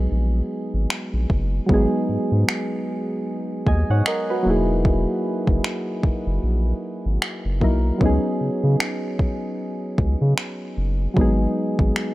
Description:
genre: contemporary R&B.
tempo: 76 BPM.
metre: 4/4.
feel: swing 58% on 16ths.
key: G# minor.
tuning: A4 = 440 Hz.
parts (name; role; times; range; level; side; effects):
soft electric-piano-like synth keys; accompaniment; 0.0-12.1 s; F#3 to G#5; -23 LUFS; equal; chorus.
saturated sub bass; bass; 0.0-11.9 s; E1 to C#3; -20 LUFS; equal; none.
smooth R&B drum kit; drums; 0.9-12.1 s; finger snaps, kick drum; -22 LUFS; equal; none.
room: digital ambience.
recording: dry, gritty hardware recording.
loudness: -19 LUFS.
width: side -18 dB against mid.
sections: 0.0-12.1 A section.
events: none.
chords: 0.0 G#m7; 4.5 Emaj9#11; 8.0 C#9sus4; 11.2 G#m7.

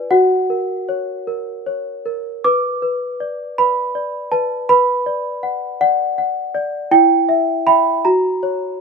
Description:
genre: classical, lullaby for celesta.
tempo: 53 BPM (dotted quarters).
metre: 6/8.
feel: rubato.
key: B minor.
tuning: A4 = 440 Hz.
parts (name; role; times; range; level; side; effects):
small celesta; solo; 0.0-8.8 s; E4 to D6; -15 LUFS; right 1 dB; none.
room: little or no reverb.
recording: minimal, uncompressed stereo recording.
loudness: -15 LUFS.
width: side -4 dB against mid.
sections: 0.0-8.8 A section.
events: none.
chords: 0.1 F#; 2.4 Bm; 6.9 Em; 8.1 F#.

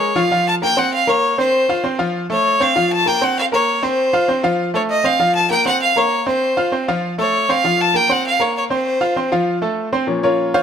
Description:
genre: latin.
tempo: 197 BPM.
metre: 4/4.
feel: straight.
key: Bb harmonic minor.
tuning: A4 = 440 Hz.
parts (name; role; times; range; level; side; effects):
clear fiddle; melody; 0.0-9.3 s; C5 to A5; -16 LUFS; equal; none.
bright grand piano; accompaniment; 0.0-10.6 s; Bb2 to F6; -18 LUFS; equal; none.
room: moderate plate reverb, RT60 2.9 s.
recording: none.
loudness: -14 LUFS.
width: side -8 dB against mid.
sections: 0.3-10.1 A section.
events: none.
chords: 0.3 Bbmadd9; 1.5 F; 2.8 Bbmadd9; 4.0 F; 5.2 Bbmadd9; 6.4 F; 7.6 Bbsus2; 8.9 F; 10.1 Bbmadd9.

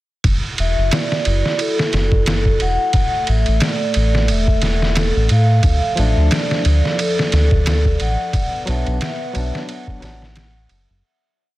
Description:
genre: trip hop.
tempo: 89 BPM.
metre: 4/4.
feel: swing 57% on 16ths.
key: F# minor.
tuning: A4 = 440 Hz.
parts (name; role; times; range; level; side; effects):
dark analog pad; sustained chords; 0.2-11.0 s; F3 to F#5; -27 LUFS; right 2 dB; chorus.
round analog bass; bass; 0.2-11.0 s; E1 to A2; -16 LUFS; equal; none.
trip hop sampler-style drum kit; drums; 0.2-10.9 s; kick drum, ride cymbal, snare drum; -20 LUFS; equal; none.
vibraphone with medium mallets; melody; 0.6-10.7 s; A4 to F#5; -22 LUFS; equal; dub echo.
barky tine electric piano; accompaniment; 6.0-10.2 s; F3 to D4; -26 LUFS; left 1 dB; tremolo, vintage 12-bit sampler grit, tape echo.
room: digital ambience.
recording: dense, heavily limited modern master.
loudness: -15 LUFS.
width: side -17 dB against mid.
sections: 0.2-11.0 groove.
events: fade-out 7.4-11.0.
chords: 0.2 F#m7; 2.9 A5; 5.6 Dm; 8.3 Bm.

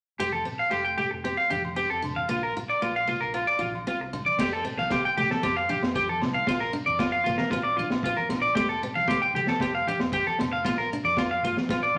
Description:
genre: highlife guitar band.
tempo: 115 BPM.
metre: 4/4.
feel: straight.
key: F major.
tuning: A4 = 441 Hz.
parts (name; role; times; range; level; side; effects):
picked steel-string acoustic guitar; accompaniment; 0.2-11.9 s; A3 to F4; -38 LUFS; equal; none.
electric guitar at the edge of break-up; arpeggios; 0.2-11.9 s; F4 to G5; -27 LUFS; equal; none.
fingered electric bass; bass; 0.2-11.9 s; F1 to F2; -43 LUFS; equal; none.
agogo bells; percussion; 0.2-11.8 s; none; -43 LUFS; equal; none.
congas; percussion; 0.2-12.0 s; none; -42 LUFS; equal; none.
shekere; percussion; 0.2-11.8 s; none; -48 LUFS; equal; none.
crunchy breakbeat drum kit; drums; 4.4-11.8 s; crash cymbal, kick drum, snare drum; -32 LUFS; equal; none.
room: wet large studio reverb, RT60 1.2 s.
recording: none.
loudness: -26 LUFS.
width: mono.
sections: 0.2-4.4 A section; 4.4-12.0 B section.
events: none.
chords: 0.2 Fadd9; 2.3 Bb; 4.4 Fadd9; 6.5 Bb; 8.6 Fadd9; 10.7 Bb.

